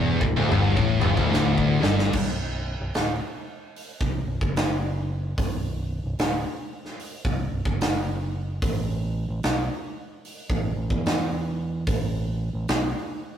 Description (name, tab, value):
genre	stoner and doom metal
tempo	74 BPM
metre	4/4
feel	swing 62% on 8ths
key	B minor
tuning	A4 = 442 Hz
part	mellow tonewheel organ	sustained chords	0.0-2.1 s	D3 to E4	-35 LUFS	equal	slow rotary speaker
part	heavy high-gain guitar	riff	0.0-2.1 s	D2 to A2	-26 LUFS	right 1 dB	distortion
part	thick fuzz guitar	riff	0.0-2.1 s	D2 to A2	-26 LUFS	left 7 dB	distortion
part	thick fuzz guitar	riff	0.0-2.1 s	D2 to A2	-27 LUFS	equal	distortion
part	overdriven fingered electric bass	bass	0.0-12.9 s	B0 to E2	-28 LUFS	right 1 dB	none
part	big rock drum kit	drums	0.2-12.9 s	crash cymbal, hi-hat, kick drum, snare drum, toms	-26 LUFS	equal	none
room	light reverb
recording	rough rehearsal-room recording, tube saturation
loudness	-23 LUFS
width	side -9 dB against mid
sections	0.0-2.1 A section; 2.1-13.4 B section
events	drum fill 0.0-2.1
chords	0.0 D5; 2.1 B5; 8.6 A5